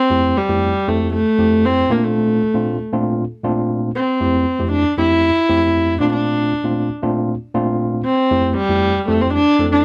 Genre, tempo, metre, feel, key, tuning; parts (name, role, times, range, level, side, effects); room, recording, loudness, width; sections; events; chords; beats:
funk; 117 BPM; 4/4; straight; F major; A4 = 440 Hz
dark viola; melody; 0.0-9.8 s; G3 to E4; -18 LUFS; equal; slapback echo
tine electric piano; accompaniment; 0.1-9.8 s; F2 to A4; -22 LUFS; equal; overdrive
light reverb; dry, close 1970s-style studio recording; -17 LUFS; mono
0.0-9.8 A section
0.1 Fmaj7; 1.9 Bbmaj7; 4.2 Fmaj7; 6.0 Bbmaj7; 8.3 Fmaj7
| 0.11 0.62 1.13 1.65 | 2.16 2.67 3.19 3.70 | 4.21 4.72 5.24 5.75 | 6.26 6.78 7.29 7.80 | 8.31 8.83 9.34